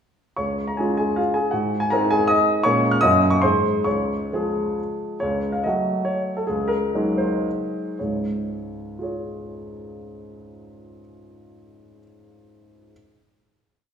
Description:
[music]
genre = classical, romantic triple-time dance for piano with dotted rhythms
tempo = 101-172 BPM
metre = 3/4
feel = rubato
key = Db major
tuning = A4 = 445 Hz
[part]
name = warm baby grand piano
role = solo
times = 0.4-12.9 s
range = Db2 to F6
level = -20 LUFS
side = equal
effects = none
[sound]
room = wet recital hall reverb, RT60 1.5 s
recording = recorded in a church or concert hall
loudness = -20 LUFS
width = side -7 dB against mid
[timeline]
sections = 0.4-5.2 A section; 5.2-8.0 coda; 8.0-10.9 final chord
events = slowing down 4.6-8.0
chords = 0.4 Db; 1.5 Ab7; 2.6 Bbm7; 3.0 Ebm7/Gb; 3.4 Ab; 3.9 Db; 5.2 Gbm/Db; 6.5 Ab7/Db; 8.0 Db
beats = | 0.39 0.80 1.19 | 1.55 1.92 2.29 | 2.65 3.02 3.43 | 3.86 4.32 4.79 | 5.21 5.65 6.08 | 6.49 6.92 7.45 | 8.00 8.48 8.98 | 9.44 9.92 10.40

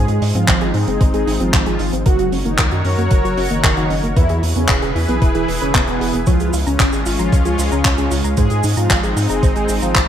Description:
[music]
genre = italo disco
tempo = 114 BPM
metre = 4/4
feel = straight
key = unclear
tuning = A4 = 440 Hz
[part]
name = mellow synth brass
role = melody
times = 0.0-10.0 s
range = B2 to Ab4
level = -21 LUFS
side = right 1 dB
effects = chorus, phaser, digital delay
[part]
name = lush unison pad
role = sustained chords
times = 0.0-10.1 s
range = E3 to Db5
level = -23 LUFS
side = equal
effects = chorus, vintage 12-bit sampler grit
[part]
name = soft round pluck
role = arpeggios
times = 0.0-10.1 s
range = Bb3 to Bb5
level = -26 LUFS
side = right 1 dB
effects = chorus, cassette tape, digital delay
[part]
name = round analog bass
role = bass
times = 0.0-10.1 s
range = E1 to Ab2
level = -20 LUFS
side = equal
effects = none
[part]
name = damped 70s drum kit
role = drums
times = 0.1-10.1 s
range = cabasa, handclaps, hi-hat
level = -21 LUFS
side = equal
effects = small room ambience, gated reverb
[part]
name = electronic kick drum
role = drums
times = 0.5-10.1 s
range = none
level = -15 LUFS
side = equal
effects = small room ambience
[sound]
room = light reverb, small room reverb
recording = bright 1980s-style digital production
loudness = -14 LUFS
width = side -10 dB against mid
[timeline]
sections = 0.0-10.1 A section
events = none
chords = 0.0 Ab; 2.1 Gb; 4.2 E; 6.3 Db; 8.4 Ab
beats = 0.48 1.01 1.53 | 2.06 2.59 3.11 3.64 | 4.17 4.69 5.22 5.75 | 6.27 6.80 7.32 7.85 | 8.38 8.90 9.43 9.96

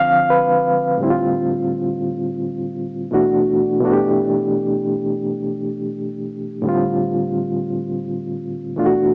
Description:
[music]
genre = R&B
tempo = 85 BPM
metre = 4/4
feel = swing 58% on 16ths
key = D dorian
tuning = A4 = 441 Hz
[part]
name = overdriven reed electric piano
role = solo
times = 0.0-9.1 s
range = A2 to F5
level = -19 LUFS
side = equal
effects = fast tremolo, cassette tape
[sound]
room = light reverb, digital ambience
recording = home recording on cassette, small speaker sound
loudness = -20 LUFS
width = mono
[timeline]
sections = 1.0-9.1 A section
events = none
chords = 0.0 Dm7; 3.1 Dadd9; 3.8 G69; 6.6 Dm7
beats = 0.29 | 0.99 1.70 2.40 3.11 | 3.82 4.52 5.23 5.93 | 6.64 7.35 8.05 8.76

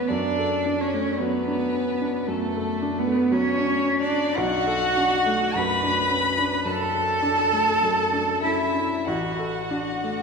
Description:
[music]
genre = classical, slow romantic movement for piano trio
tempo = 45-59 BPM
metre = 4/4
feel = rubato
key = unclear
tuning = A4 = 439 Hz
[part]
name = warm violin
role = melody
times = 0.0-10.2 s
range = A4 to B5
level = -28 LUFS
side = left 5 dB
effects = none
[part]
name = rich cello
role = second line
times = 0.0-10.2 s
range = A3 to B4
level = -23 LUFS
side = right 2 dB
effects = none
[part]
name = warm grand piano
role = accompaniment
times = 0.0-10.2 s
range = A1 to A4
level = -27 LUFS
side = left 1 dB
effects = none
[sound]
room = wet church reverb, RT60 2.4 s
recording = minimal, uncompressed stereo recording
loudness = -21 LUFS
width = side -5 dB against mid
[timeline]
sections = 0.0-10.2 A section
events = none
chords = 0.1 D/F#; 4.4 Bm7; 9.1 D/A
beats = | 0.09 1.19 2.28 3.32 | 4.37 5.55 6.66 7.82 | 9.06

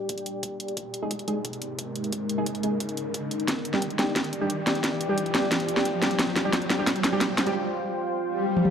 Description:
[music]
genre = dark technical drum and bass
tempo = 177 BPM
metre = 4/4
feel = straight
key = G phrygian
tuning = A4 = 441 Hz
[part]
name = deep dark ambient pad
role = sustained chords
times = 0.0-8.7 s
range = Ab3 to G5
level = -30 LUFS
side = left 1 dB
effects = chorus, built-in reverb, sidechain pumping
[part]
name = riser and swell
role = sound effects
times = 0.1-8.7 s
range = none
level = -33 LUFS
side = equal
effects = none
[part]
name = drum and bass drum kit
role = drums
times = 0.1-8.7 s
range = hi-hat, snare drum, toms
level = -26 LUFS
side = equal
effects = overdrive
[part]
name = electronic kick drum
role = drums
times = 0.1-7.3 s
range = none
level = -43 LUFS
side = equal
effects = none
[part]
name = orchestra-hit-like synth stab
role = stabs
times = 1.0-7.5 s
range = G3 to Ab4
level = -30 LUFS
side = right 1 dB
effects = built-in reverb, dub echo
[sound]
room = moderate plate reverb, RT60 2.2 s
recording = dark, warm production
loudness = -24 LUFS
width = side -7 dB against mid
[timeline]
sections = 0.0-8.7 A section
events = build-up 0.0-8.7; filter sweep on synth stab 0.0-8.7; riser 0.1-7.5; drum fill 3.5-7.5; break 7.5-8.7; swell 8.3-8.7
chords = 0.0 G5; 0.8 Ab5; 3.5 G5; 6.2 F5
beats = 0.09 0.43 | 0.77 1.11 1.45 1.79 | 2.13 2.46 2.80 3.14 | 3.48 3.82 4.16 4.50 | 4.84 5.18 5.52 5.86 | 6.19 6.53 6.87 7.21 | 7.55 7.89 8.23 8.57

